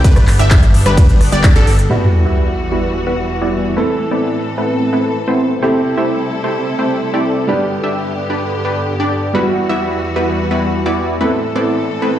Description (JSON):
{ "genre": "EDM, festival progressive house", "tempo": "129 BPM", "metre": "4/4", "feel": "straight", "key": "E minor", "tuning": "A4 = 440 Hz", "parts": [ { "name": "bright studio string section", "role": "sustained chords", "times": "0.0-12.2 s", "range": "E2 to A4", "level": "-21 LUFS", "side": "left 1 dB", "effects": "vintage 12-bit sampler grit, sidechain pumping" }, { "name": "wide unison pluck", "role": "arpeggios", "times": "0.0-1.7 s", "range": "A4 to E5", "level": "-22 LUFS", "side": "right 1 dB", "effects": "sidechain pumping, ping-pong delay" }, { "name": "supersaw stab", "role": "riff", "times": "0.0-12.2 s", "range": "G3 to E5", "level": "-17 LUFS", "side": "equal", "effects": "sidechain pumping, low-pass filter, ping-pong delay" }, { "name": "fat analog bass", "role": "bass", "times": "0.0-1.9 s", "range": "G1", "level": "-14 LUFS", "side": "equal", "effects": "sidechain pumping" }, { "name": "big-room dance drum kit", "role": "drums", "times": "0.0-1.9 s", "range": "handclaps, hi-hat, ride cymbal, rim click", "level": "-22 LUFS", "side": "equal", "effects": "none" }, { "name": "electronic kick drum", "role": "drums", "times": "0.0-1.5 s", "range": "none", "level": "-9 LUFS", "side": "equal", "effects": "none" }, { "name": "clear grand piano", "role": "accompaniment", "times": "1.9-12.2 s", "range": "G3 to A4", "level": "-22 LUFS", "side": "right 2 dB", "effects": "sidechain pumping, ping-pong delay" }, { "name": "sub drop", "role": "sound effects", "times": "1.9-3.8 s", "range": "none", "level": "-17 LUFS", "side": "equal", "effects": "none" } ], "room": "light reverb", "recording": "played on a big sound system in a bare room, large studio reverb", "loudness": "-12 LUFS", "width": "side -11 dB against mid", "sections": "0.0-1.9 A section; 1.9-12.2 B section", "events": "drop 0.0-1.9; band accent 1.4; impact 1.9-3.8; filter sweep on supersaw synth 1.9-12.2", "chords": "0.0 G; 1.9 Emadd9; 3.8 Amadd9; 5.6 C6; 7.5 G; 9.3 Emadd9; 11.2 Amadd9", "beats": "| 0.04 0.51 0.97 1.44 | 1.91 2.37 2.83 3.30 | 3.77 4.23 4.70 5.16 | 5.63 6.09 6.56 7.02 | 7.49 7.95 8.42 8.88 | 9.35 9.81 10.28 10.74 | 11.21 11.67 12.14" }